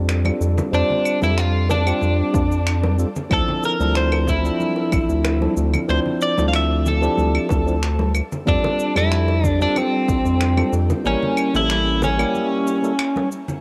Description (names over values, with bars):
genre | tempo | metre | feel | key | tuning
sunset chillout | 93 BPM | 4/4 | straight | D minor | A4 = 439 Hz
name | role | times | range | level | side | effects
tine electric piano | accompaniment | 0.0-12.9 s | F3 to D5 | -26 LUFS | equal | cassette tape, shimmer reverb
round analog bass | bass | 0.0-12.2 s | A1 to F2 | -22 LUFS | equal | none
electronic finger snaps, cabasa and claves | drums | 0.1-13.6 s | none | -31 LUFS | equal | cassette tape
bongos and congas | percussion | 0.1-13.6 s | none | -31 LUFS | equal | none
twelve-string electric guitar | melody | 0.7-13.3 s | C4 to F5 | -24 LUFS | equal | cassette tape, analog delay, shimmer reverb
electronic kick drum | drums | 2.3-10.2 s | none | -25 LUFS | equal | cassette tape
room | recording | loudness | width
moderate spring reverb, RT60 1.6 s, digital ambience | home recording on cassette | -19 LUFS | mono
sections
0.0-13.6 A section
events
break 12.3-13.6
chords
0.0 F6; 3.3 Dm9; 8.5 F6; 11.1 A7b9